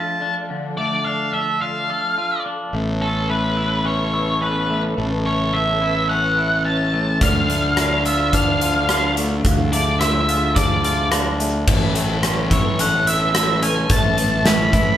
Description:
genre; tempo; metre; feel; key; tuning
post-rock; 107 BPM; 4/4; straight; A major; A4 = 436 Hz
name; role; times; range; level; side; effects
octave-fuzz lead guitar; melody; 0.0-15.0 s; A4 to B5; -21 LUFS; equal; distortion
dark symphonic string section; sustained chords; 0.0-15.0 s; C#3 to A4; -30 LUFS; equal; none
twangy electric guitar; arpeggios; 0.0-15.0 s; D3 to A4; -25 LUFS; left 1 dB; none
vibraphone with soft mallets; arpeggios; 2.7-15.0 s; F4 to F5; -31 LUFS; right 2 dB; none
fuzz fingered electric bass; bass; 2.7-15.0 s; A1 to D2; -22 LUFS; equal; overdrive
big rock drum kit; drums; 7.2-14.9 s; crash cymbal, hi-hat, kick drum, rim click, snare drum; -20 LUFS; equal; none
room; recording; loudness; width
moderate large studio reverb, RT60 1.4 s; band playing live in one room; -16 LUFS; side -11 dB against mid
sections
0.0-2.7 A section; 2.7-11.7 A section; 11.7-15.0 B section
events
none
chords
0.0 Dm; 2.7 Aadd9; 7.2 Dm; 11.7 Aadd9

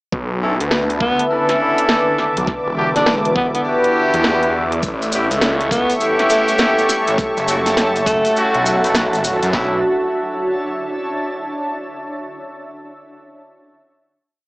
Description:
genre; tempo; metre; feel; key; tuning
glitch hop; 102 BPM; 4/4; swing 64% on 16ths; B minor; A4 = 440 Hz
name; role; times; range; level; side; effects
dark analog pad; sustained chords; 0.1-9.8 s; D4 to D6; -20 LUFS; equal; chorus, sidechain pumping
phased detuned saw bass; bass; 0.1-9.8 s; E1 to F#2; -22 LUFS; equal; phaser
drum and bass drum kit; drums; 0.1-9.7 s; handclaps, kick drum, snare drum; -23 LUFS; equal; none
granular cloud pad; texture; 1.0-11.9 s; D3 to A5; -23 LUFS; right 1 dB; built-in reverb, sidechain pumping
warm horn section; stabs; 0.4-9.8 s; A3 to B4; -20 LUFS; equal; sidechain pumping, analog delay
drum and bass drum kit; drums; 0.6-9.5 s; hi-hat, snare drum; -20 LUFS; equal; none
breathy tenor saxophone; melody; 1.0-8.5 s; A3 to D4; -20 LUFS; equal; analog delay
cabasa; percussion; 4.8-9.5 s; none; -27 LUFS; equal; none
room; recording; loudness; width
light reverb; dry, gritty hardware recording, small speaker sound; -15 LUFS; side -23 dB against mid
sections
0.1-9.5 drop; 9.5-11.9 final chord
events
drop 0.1-9.5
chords
0.1 Bm11; 2.5 Em7; 4.8 A7; 7.2 F#m7; 9.5 Bm11 (rootless)

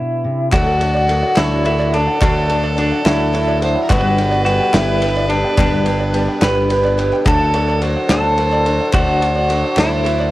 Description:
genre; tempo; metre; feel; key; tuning
indie folk with a building arrangement; 72 BPM (dotted quarters); 6/8; straight; unclear; A4 = 444 Hz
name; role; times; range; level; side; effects
electric guitar through a small old amp; melody; 0.0-10.3 s; D4 to B4; -18 LUFS; equal; tremolo, cassette tape
fingerpicked steel-string acoustic guitar; accompaniment; 0.0-0.5 s; B2 to B4; -21 LUFS; left 1 dB; none
clear fiddle; second line; 0.5-10.3 s; F#4 to C5; -24 LUFS; right 2 dB; none
picked twelve-string acoustic guitar; accompaniment; 0.5-10.3 s; G2 to A4; -22 LUFS; left 3 dB; none
hand-pumped harmonium; sustained chords; 0.5-10.3 s; A2 to B4; -25 LUFS; right 1 dB; none
open-back banjo; arpeggios; 0.5-10.3 s; G3 to G5; -27 LUFS; right 3 dB; tape echo
picked electric bass; bass; 0.5-10.3 s; G1 to D2; -20 LUFS; equal; none
loose indie drum kit; drums; 0.5-10.2 s; kick drum, ride cymbal, snare drum; -21 LUFS; equal; none
group handclap; percussion; 0.5-10.3 s; none; -29 LUFS; left 3 dB; none
room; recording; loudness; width
light reverb; home recording on cassette; -13 LUFS; side -16 dB against mid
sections
0.5-10.3 A section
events
none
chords
0.0 G (rootless); 0.5 D; 3.9 G; 7.3 D

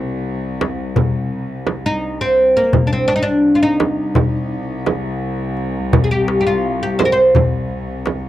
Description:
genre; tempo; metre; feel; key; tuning
Turkish makam ensemble; 169 BPM (eighths); 9/8; straight; C makam nihavent; A4 = 438 Hz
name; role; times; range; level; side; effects
oud; melody; 0.0-8.3 s; Bb3 to C5; -15 LUFS; equal; none
warm chamber cello section; drone; 0.0-8.3 s; C2; -24 LUFS; left 1 dB; none
darbuka; percussion; 0.6-8.2 s; none; -19 LUFS; left 3 dB; none
frame drum; percussion; 0.6-8.2 s; none; -19 LUFS; right 5 dB; none
room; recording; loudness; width
light reverb; dry, close 1970s-style studio recording; -15 LUFS; side -13 dB against mid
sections
0.0-8.3 A section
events
none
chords
none

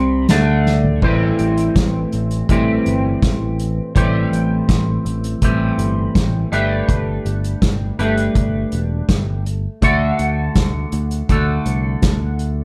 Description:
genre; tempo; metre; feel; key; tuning
psychedelic rock; 82 BPM; 4/4; straight; A dorian; A4 = 441 Hz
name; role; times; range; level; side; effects
twangy electric guitar; riff; 0.0-12.6 s; A2 to B4; -22 LUFS; equal; flanger
picked electric bass; bass; 0.0-12.6 s; E1 to D2; -23 LUFS; equal; none
soft-mallet drum kit; drums; 0.3-12.6 s; crash cymbal, hi-hat, kick drum, snare drum, toms; -20 LUFS; equal; none
room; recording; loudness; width
little or no reverb; none; -18 LUFS; mono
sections
0.0-1.0 A section; 1.0-12.6 B section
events
drum fill 0.7-1.0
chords
0.3 D5; 1.0 Am7; 6.5 Gadd9; 9.8 D

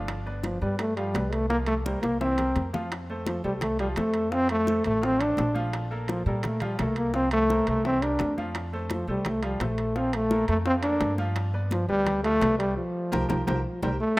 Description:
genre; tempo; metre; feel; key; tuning
latin, salsa; 170 BPM; 4/4; straight; F major; A4 = 440 Hz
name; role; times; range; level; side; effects
bright upright piano; accompaniment; 0.0-13.9 s; E3 to F5; -35 LUFS; equal; none
upright bass; bass; 0.0-14.0 s; G1 to Bb2; -31 LUFS; equal; none
bongos; percussion; 0.1-13.9 s; none; -36 LUFS; left 3 dB; none
congas; percussion; 0.1-13.9 s; none; -37 LUFS; equal; none
timbales; percussion; 0.1-13.9 s; none; -39 LUFS; right 4 dB; none
warm trombone; melody; 0.4-14.2 s; F3 to D4; -26 LUFS; equal; slapback echo
room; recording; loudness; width
light reverb, studio reverb; rough home demo mix; -24 LUFS; side -20 dB against mid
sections
0.0-2.9 A section; 2.9-14.2 A section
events
drum fill 2.0-2.9, 13.1-14.2; band accent 12.8-14.2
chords
0.1 G7; 1.5 C7sus4; 2.2 C7; 2.9 F; 4.3 Dm7; 5.7 Bb5; 7.1 C7sus4; 7.8 C7; 8.5 F; 10.0 Bbmaj7; 11.4 G7; 12.8 C7sus4

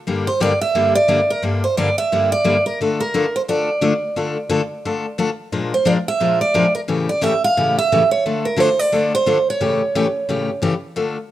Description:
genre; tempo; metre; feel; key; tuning
jazz; 176 BPM; 4/4; swing 59% on 8ths; D minor; A4 = 444 Hz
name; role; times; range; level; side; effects
picked steel-string acoustic guitar; accompaniment; 0.1-11.2 s; G2 to Bb4; -20 LUFS; left 3 dB; none
picked steel-string acoustic guitar; melody; 0.3-10.6 s; Bb4 to F5; -18 LUFS; right 3 dB; plate reverb
room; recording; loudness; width
moderate studio reverb, RT60 0.7 s; rough home demo mix; -16 LUFS; side -13 dB against mid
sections
0.0-11.0 A section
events
none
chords
0.1 Gm; 2.8 Dm; 5.5 Bb7; 6.9 A7; 8.2 Dm; 9.6 A7

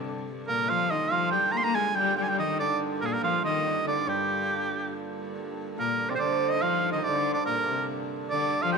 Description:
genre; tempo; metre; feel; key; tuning
medieval dance; 142 BPM; 3/4; straight; G minor; A4 = 440 Hz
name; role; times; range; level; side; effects
rich viola da gamba; second line; 0.0-8.8 s; G2 to Bb3; -32 LUFS; left 12 dB; none
bright hurdy-gurdy; drone; 0.0-8.8 s; G2 to D3; -37 LUFS; equal; none
bright shawm; melody; 0.5-8.8 s; G4 to C6; -27 LUFS; right 2 dB; none
hammered dulcimer; second line; 0.5-8.8 s; G3 to Bb4; -32 LUFS; right 10 dB; none
room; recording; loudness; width
moderate echo chamber reverb, RT60 1.8 s, studio reverb; 1960s-style stereo with parts hard left and right; -25 LUFS; side -5 dB against mid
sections
0.0-5.3 A section; 5.3-8.8 B section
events
none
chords
none

